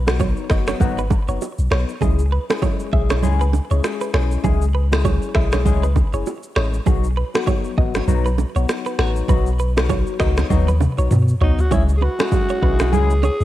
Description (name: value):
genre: afrobeats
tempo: 99 BPM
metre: 4/4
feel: swing 58% on 16ths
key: C# minor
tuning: A4 = 440 Hz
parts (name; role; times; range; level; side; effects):
- direct-recorded clean electric guitar; riff; 0.0-13.4 s; G#4 to E5; -29 LUFS; right 7 dB; cassette tape, tape echo
- punchy sub bass; bass; 0.0-13.4 s; F#1 to B2; -18 LUFS; equal; none
- barky tine electric piano; accompaniment; 0.1-13.4 s; F#3 to G#4; -26 LUFS; left 9 dB; phaser, cassette tape
- afro-pop drum kit; drums; 0.1-13.4 s; finger snaps, kick drum, rim click, shaker, toms; -20 LUFS; equal; overdrive, cassette tape
- bongos and congas; percussion; 0.1-13.4 s; none; -26 LUFS; right 9 dB; none
- breathy alto saxophone; melody; 11.4-13.4 s; D#4 to G#4; -22 LUFS; right 1 dB; cassette tape
room: digital ambience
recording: home recording on cassette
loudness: -16 LUFS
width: side -14 dB against mid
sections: 0.0-11.7 A section; 11.7-13.4 B section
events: drum fill 10.5-11.7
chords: 0.0 B; 2.0 C#m; 6.9 B; 11.7 C#m